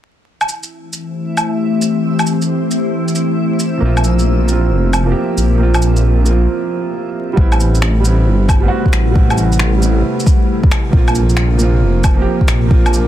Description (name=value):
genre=future garage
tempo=135 BPM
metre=4/4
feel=swing 67% on 16ths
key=unclear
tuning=A4 = 441 Hz
part: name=ethereal airy pad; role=sustained chords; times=1.0-13.1 s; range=C3 to C5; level=-19 LUFS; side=left 2 dB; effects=ensemble chorus, built-in reverb, sidechain pumping
part: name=backwards swelling texture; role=texture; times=0.7-6.5 s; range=E4 to E5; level=-28 LUFS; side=right 2 dB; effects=built-in reverb
part: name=electronic shaker, woodblock and finger snaps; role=drums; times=0.4-13.1 s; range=none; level=-21 LUFS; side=equal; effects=overdrive, soft clipping on snare
part: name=warm upright piano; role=accompaniment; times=3.8-13.1 s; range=F3 to G4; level=-19 LUFS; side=right 4 dB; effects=sidechain pumping, analog delay
part: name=swelling detuned saw bass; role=bass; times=3.8-13.1 s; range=F1 to Bb1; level=-13 LUFS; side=equal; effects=sidechain pumping
part: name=electronic kick drum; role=drums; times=7.4-12.8 s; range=none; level=-12 LUFS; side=equal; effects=overdrive
room=digital ambience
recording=dense, heavily limited modern master, vinyl crackle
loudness=-12 LUFS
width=side -12 dB against mid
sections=0.3-7.4 A section; 7.4-13.1 B section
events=break 6.5-7.4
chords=0.3 Am7; 3.8 Bbsus2; 7.4 Am7; 10.9 Bbsus2